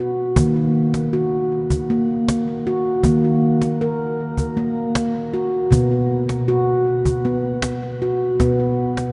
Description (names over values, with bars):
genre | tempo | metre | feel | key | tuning
world meditative, meditative tuned percussion | 157 BPM (eighths) | 7/8 | straight | Eb minor | A4 = 440 Hz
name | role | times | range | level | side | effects
handpan | arpeggios | 0.0-9.1 s | B2 to Bb4 | -20 LUFS | equal | delay, shimmer reverb
cajon | percussion | 0.4-9.1 s | none | -26 LUFS | equal | none
room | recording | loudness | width
wet cathedral reverb, RT60 6.3 s | in a vast, echoing space, nothing above 10.8 kHz | -20 LUFS | mono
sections
0.4-9.1 A section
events
none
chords
0.4 Ebm; 5.7 B5